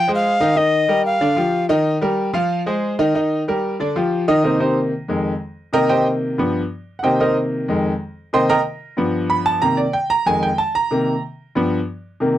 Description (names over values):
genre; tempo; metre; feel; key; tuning
latin; 186 BPM; 4/4; straight; unclear; A4 = 438 Hz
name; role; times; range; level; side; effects
bright alto recorder; melody; 0.0-1.7 s; Eb5 to G5; -17 LUFS; left 1 dB; none
bright concert grand piano; accompaniment; 0.1-12.4 s; F2 to C6; -17 LUFS; equal; none
room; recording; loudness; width
light reverb; dry, close 1970s-style studio recording; -17 LUFS; side -12 dB against mid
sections
0.0-4.4 A section; 4.4-12.4 B section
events
grand piano solo 4.4-12.4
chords
0.0 Fm7; 0.6 Ebadd9; 1.2 G5; 1.9 Ebadd9; 2.5 Fm7; 3.1 Eb; 3.8 G5; 4.4 Cm7; 5.1 Fm7; 5.7 Cm7; 6.4 G7; 7.0 Cm7; 7.7 Fm7; 8.3 Cm7; 9.0 G7; 9.6 Cm7; 10.3 Fm7; 10.9 Cm7; 11.6 G7